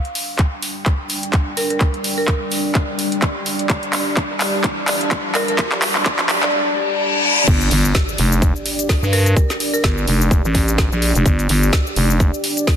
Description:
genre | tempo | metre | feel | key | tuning
bass house | 127 BPM | 4/4 | swing 56% on 16ths | G minor | A4 = 440 Hz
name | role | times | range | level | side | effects
dark analog pad | sustained chords | 0.6-12.8 s | G3 to A5 | -24 LUFS | equal | chorus, sidechain pumping
riser, reverse cymbal and impact | sound effects | 1.6-9.4 s | none | -23 LUFS | left 2 dB | none
garage drum kit | drums | 0.1-12.8 s | crash cymbal, handclaps, hi-hat, shaker, snare drum | -21 LUFS | equal | none
electronic kick drum | drums | 0.4-12.8 s | none | -17 LUFS | equal | none
marimba with medium hard mallets | melody | 1.6-10.2 s | Bb4 to D5 | -25 LUFS | right 1 dB | ping-pong delay
growling FM bass | bass | 7.5-12.3 s | F1 to G2 | -16 LUFS | equal | tube saturation, sidechain pumping
room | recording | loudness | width
moderate lush hall reverb, RT60 1.8 s, digital ambience | dense, heavily limited modern master, high-pass filter, lossy compression artefacts | -15 LUFS | side -9 dB against mid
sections
0.0-7.5 A section; 7.5-12.8 B section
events
build-up 0.0-7.5; drum fill 0.0-6.5; filter sweep 0.0-7.5; riser 1.6-6.5; reverse cymbal 6.5-7.5; drop 7.5-12.8; impact 7.5-9.4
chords
0.0 G5

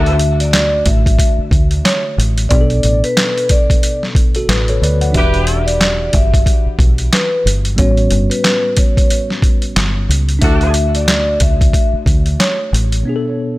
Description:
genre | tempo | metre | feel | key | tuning
hip hop, boom-bap hip-hop | 91 BPM | 4/4 | swing 59% on 16ths | unclear | A4 = 440 Hz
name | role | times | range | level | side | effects
vibraphone with soft mallets | melody | 0.0-12.7 s | B4 to E5 | -19 LUFS | left 1 dB | high-pass filter, low-pass filter, tape echo
mellow tine electric piano | accompaniment | 0.0-13.6 s | A2 to F#5 | -21 LUFS | left 1 dB | medium stereo tremolo, cassette tape, high-pass filter, low-pass filter
warm horn section | stabs | 0.0-0.2, 5.2-5.6, 10.4-10.7 s | B3 to B4 | -24 LUFS | right 1 dB | high-pass filter, low-pass filter, tape echo
deep dub fingered electric bass | bass | 0.0-13.0 s | E1 to D2 | -15 LUFS | equal | none
boom bap sampler-style drum kit | drums | 0.1-13.0 s | handclaps, hi-hat, kick drum, snare drum | -14 LUFS | equal | none
room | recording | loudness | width
digital ambience | none | -11 LUFS | side -18 dB against mid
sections
0.0-13.6 A section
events
break 13.1-13.6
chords
0.0 D; 2.5 Bm7; 5.1 Em9; 7.8 A13; 10.4 D; 13.1 Bm7

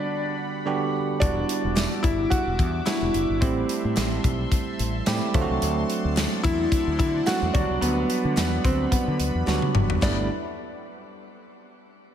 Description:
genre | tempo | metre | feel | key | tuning
1980s-style pop | 109 BPM | 4/4 | swing 55% on 16ths | G major | A4 = 441 Hz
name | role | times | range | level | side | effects
clear baby grand piano | melody | 0.0-10.3 s | B3 to F#4 | -27 LUFS | left 1 dB | slapback echo, ping-pong delay, shimmer reverb
bell-like tine electric piano | accompaniment | 0.0-10.3 s | D3 to G4 | -28 LUFS | right 4 dB | slapback echo, shimmer reverb
sweeping resonant pad | sustained chords | 0.0-10.3 s | G3 to D6 | -36 LUFS | left 2 dB | chorus, shimmer reverb
fretless electric bass | bass | 1.2-10.3 s | E1 to D3 | -28 LUFS | left 1 dB | none
modern studio drum kit | drums | 1.2-10.2 s | crash cymbal, hi-hat, kick drum, snare drum, tambourine, toms | -25 LUFS | left 1 dB | none
group handclap | percussion | 1.8-10.3 s | none | barely audible | none | none
room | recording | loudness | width
moderate scoring stage reverb, RT60 1.9 s, small room ambience | big arena sound | -21 LUFS | side -9 dB against mid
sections
0.0-10.0 A section; 10.0-12.1 B section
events
drum fill 9.5-10.0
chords
0.0 Gmaj7/D; 1.2 Em9; 3.4 Am7; 5.3 D7; 7.5 Gmaj7; 10.0 G69

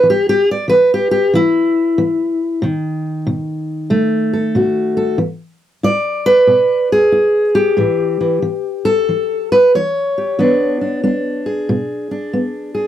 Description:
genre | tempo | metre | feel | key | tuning
acoustic country blues, solo or duo | 93 BPM | 4/4 | swing 64% on 8ths | unclear | A4 = 442 Hz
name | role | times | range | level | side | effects
fingerpicked steel-string acoustic guitar | solo | 0.0-12.9 s | A2 to D5 | -13 LUFS | equal | none
room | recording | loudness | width
little or no reverb | dry, close 1970s-style studio recording | -13 LUFS | side -11 dB against mid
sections
0.0-5.2 A section; 5.2-12.9 B section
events
steel-string acoustic guitar solo 0.0-5.2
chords
0.0 N.C.; 2.6 B7; 5.2 E7; 7.8 A7; 10.4 E7

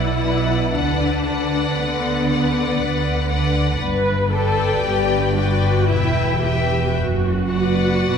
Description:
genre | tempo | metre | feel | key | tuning
classical, slow romantic movement for string orchestra | 54-61 BPM | 3/4 | rubato | B minor | A4 = 439 Hz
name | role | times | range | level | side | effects
warm studio violin section | melody | 0.0-8.2 s | F#5 to G5 | -26 LUFS | left 6 dB | none
warm studio violin section | second line | 0.0-8.2 s | B4 to E5 | -25 LUFS | left 2 dB | none
dark studio viola section | accompaniment | 0.0-8.2 s | B3 to B4 | -23 LUFS | left 1 dB | none
warm studio cello section | bass | 0.0-8.2 s | E2 to D3 | -23 LUFS | equal | none
warm studio double bass section | bass | 0.0-8.2 s | E1 to D2 | -23 LUFS | right 2 dB | none
room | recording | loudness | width
wet scoring stage reverb, RT60 2.0 s | heard from further back in the room | -17 LUFS | side -7 dB against mid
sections
0.0-8.2 A section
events
none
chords
0.0 Bm; 0.7 Bm/D; 3.8 G; 5.9 Em; 7.0 Bm/F#

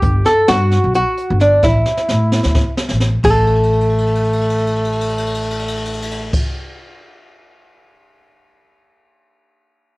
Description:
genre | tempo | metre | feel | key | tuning
progressive instrumental, band music in an uneven meter | 262 BPM (eighths) | 7/8 | straight | unclear | A4 = 441 Hz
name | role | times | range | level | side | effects
archtop guitar, miked and amplified | melody | 0.0-6.4 s | D4 to A4 | -16 LUFS | equal | none
mellow flugelhorn | second line | 0.0-6.4 s | A3 to A4 | -21 LUFS | equal | cassette tape
upright bass | bass | 0.0-6.4 s | G1 to A2 | -17 LUFS | equal | none
jazz brush drum kit | drums | 0.0-7.9 s | crash cymbal, hi-hat, kick drum, ride cymbal, snare drum | -21 LUFS | equal | cassette tape
room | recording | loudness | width
studio reverb | home recording on cassette | -13 LUFS | side -22 dB against mid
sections
0.0-3.2 A section; 3.2-6.4 B section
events
drum fill 1.6-3.2, 3.5-6.3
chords
0.0 Gmaj7(no3); 1.6 A5; 3.2 N.C.

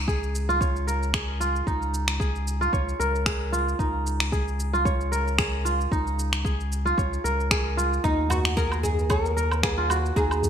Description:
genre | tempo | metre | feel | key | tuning
organic downtempo | 113 BPM | 4/4 | swing 55% on 16ths | unclear | A4 = 440 Hz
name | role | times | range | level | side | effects
kora | arpeggios | 0.0-10.5 s | Eb4 to Db5 | -27 LUFS | right 1 dB | ping-pong delay
warm sub bass | bass | 0.0-10.5 s | Db2 to Eb2 | -27 LUFS | equal | sidechain pumping
electronic kick drum | drums | 0.1-10.3 s | none | -27 LUFS | equal | none
electronic shaker, finger snaps and woodblock | drums | 0.1-10.5 s | none | -29 LUFS | equal | overdrive, gated reverb
oud | melody | 8.0-10.5 s | Eb4 to Bb4 | -27 LUFS | equal | digital delay
tabla | percussion | 8.3-10.5 s | none | -36 LUFS | left 2 dB | none
room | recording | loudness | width
moderate plate reverb, RT60 1.8 s, small room ambience | bright 1980s-style digital production | -22 LUFS | side -8 dB against mid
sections
0.0-10.5 A section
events
none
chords
0.0 Db; 8.0 Ebm7

